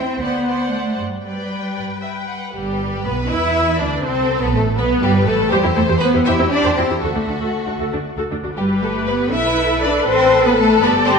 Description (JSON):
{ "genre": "quick classical-period movement for string orchestra", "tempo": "79 BPM (dotted quarters)", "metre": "6/8", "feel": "rubato", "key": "G major", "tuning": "A4 = 439 Hz", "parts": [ { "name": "warm studio violin section", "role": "melody", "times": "0.0-11.2 s", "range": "F#4 to G5", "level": "-24 LUFS", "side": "left 4 dB", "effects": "none" }, { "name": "rich chamber violin section", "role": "second line", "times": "0.0-11.1 s", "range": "G4 to F#5", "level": "-22 LUFS", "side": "left 4 dB", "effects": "none" }, { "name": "rich symphonic viola section", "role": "accompaniment", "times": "0.0-11.2 s", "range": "G3 to D5", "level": "-22 LUFS", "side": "equal", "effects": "none" }, { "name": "rich chamber double bass section", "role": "bass", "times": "0.0-11.2 s", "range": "G1 to G2", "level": "-24 LUFS", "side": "right 3 dB", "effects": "none" }, { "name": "warm symphonic cello section", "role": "bass", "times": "0.0-11.2 s", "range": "G3 to E4", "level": "-20 LUFS", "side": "right 2 dB", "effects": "none" } ], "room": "wet recital hall reverb, RT60 1.6 s", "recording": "nothing above 10.5 kHz, faint mains hum", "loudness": "-15 LUFS", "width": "side -5 dB against mid", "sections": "0.0-2.5 A section; 2.5-11.2 B section", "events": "none", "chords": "0.2 D7; 1.0 G; 3.3 Bmadd11; 4.0 Amadd9; 4.8 G; 5.5 C/E; 7.0 D; 8.6 G; 9.3 Asus24/B; 10.1 Amadd9" }